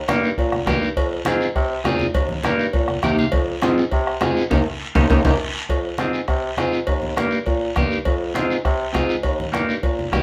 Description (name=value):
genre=latin, cumbia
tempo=203 BPM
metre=4/4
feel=straight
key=F minor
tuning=A4 = 437 Hz
part: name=mellow bassoon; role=bass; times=0.0-10.2 s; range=Eb2 to C3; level=-27 LUFS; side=equal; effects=none
part: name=clean electric guitar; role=accompaniment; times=0.1-10.2 s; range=Bb3 to G5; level=-24 LUFS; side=equal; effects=phaser
part: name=bombo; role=percussion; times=0.1-10.2 s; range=none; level=-25 LUFS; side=equal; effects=none
part: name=congas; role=percussion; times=0.1-10.2 s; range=none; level=-30 LUFS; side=equal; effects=none
part: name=cowbell and timbales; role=percussion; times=0.1-10.2 s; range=none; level=-30 LUFS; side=equal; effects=none
part: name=guiro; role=percussion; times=0.1-10.2 s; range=none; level=-36 LUFS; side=equal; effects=none
room=moderate studio ambience, RT60 0.5 s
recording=band playing live in one room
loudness=-21 LUFS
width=mono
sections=0.0-5.7 A section; 5.7-10.2 B section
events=clean electric guitar fill 2.9-3.3; band accent 4.5-5.7; drum fill 5.1-5.7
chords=0.0 Eb; 1.0 Fm; 2.1 Eb; 3.3 Fm; 4.5 Eb; 5.7 Fm; 6.9 Eb; 8.1 Fm; 9.2 Eb